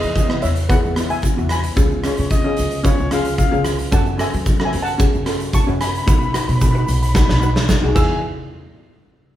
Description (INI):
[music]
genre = calypso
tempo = 112 BPM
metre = 4/4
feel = straight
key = E major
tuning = A4 = 442 Hz
[part]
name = steel pan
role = melody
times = 0.0-8.2 s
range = B4 to E6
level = -25 LUFS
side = left 1 dB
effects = none
[part]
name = steel pan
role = accompaniment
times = 0.0-8.2 s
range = B3 to B4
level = -23 LUFS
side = left 1 dB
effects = none
[part]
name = upright bass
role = bass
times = 0.0-8.2 s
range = B1 to F#3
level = -22 LUFS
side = equal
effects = none
[part]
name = big rock drum kit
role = drums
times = 0.0-8.1 s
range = crash cymbal, hi-hat, kick drum, rim click, snare drum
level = -18 LUFS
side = equal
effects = none
[part]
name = egg shaker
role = percussion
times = 0.2-8.2 s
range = none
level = -37 LUFS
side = right 5 dB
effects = none
[part]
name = breathy trumpet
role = second line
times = 2.1-3.8, 7.9-8.2 s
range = C#5 to G#5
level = -26 LUFS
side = left 3 dB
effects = none
[sound]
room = moderate large studio reverb, RT60 0.8 s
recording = band playing live in one room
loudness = -15 LUFS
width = side -12 dB against mid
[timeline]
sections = 0.0-8.2 A section; 8.2-9.4 B section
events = drum fill 7.2-8.2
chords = 0.0 Eadd9; 1.8 C#7; 3.9 F#madd9; 6.1 B; 8.0 E; 8.2 N.C.